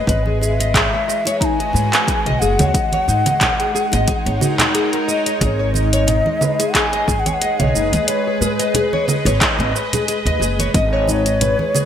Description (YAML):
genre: organic downtempo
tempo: 90 BPM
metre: 4/4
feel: swing 55% on 16ths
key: G# minor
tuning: A4 = 444 Hz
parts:
  - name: bowed-like drone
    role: sustained chords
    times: 0.0-11.9 s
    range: E3 to D#5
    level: -24 LUFS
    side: left 1 dB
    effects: built-in reverb, sidechain pumping
  - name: nylon-string guitar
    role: arpeggios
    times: 0.0-11.9 s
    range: D#4 to D#5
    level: -22 LUFS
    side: left 2 dB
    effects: wide subtle chorus, digital delay
  - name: mellow hollow bansuri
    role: melody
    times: 0.1-11.9 s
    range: B4 to A#5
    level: -21 LUFS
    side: left 1 dB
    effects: digital delay
  - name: upright bass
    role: bass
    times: 0.1-11.5 s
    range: F#1 to G#2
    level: -19 LUFS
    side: equal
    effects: sidechain pumping
  - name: deep house drum kit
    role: drums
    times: 0.1-11.9 s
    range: congas, handclaps, hi-hat, shaker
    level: -19 LUFS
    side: right 2 dB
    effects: overdrive, gated reverb
  - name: electronic kick drum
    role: drums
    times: 0.1-10.9 s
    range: none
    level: -22 LUFS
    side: equal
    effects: overdrive
  - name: congas and bongos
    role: percussion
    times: 0.3-11.7 s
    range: none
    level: -27 LUFS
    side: right 2 dB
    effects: none
room: moderate plate reverb, RT60 2.0 s, studio ambience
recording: bright 1980s-style digital production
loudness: -15 LUFS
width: side -9 dB against mid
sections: 0.0-5.4 A section; 5.4-11.9 A section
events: none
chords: 0.1 Eadd9/G#; 2.7 F#6/G#; 5.4 G#m; 10.7 E/G#